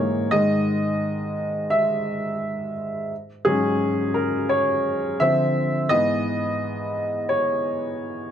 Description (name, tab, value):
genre	R&B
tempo	86 BPM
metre	4/4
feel	swing 55% on 16ths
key	unclear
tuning	A4 = 439 Hz
part	warm upright piano	solo	0.0-8.3 s	G#2 to E5	-20 LUFS	equal	none
room	moderate studio reverb, RT60 0.9 s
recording	none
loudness	-21 LUFS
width	side -9 dB against mid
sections	0.0-8.3 A section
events	upright piano solo 0.0-8.3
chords	0.3 Emaj7/G#; 3.1 G#9sus4; 5.2 Dm9; 5.9 C#m9/G#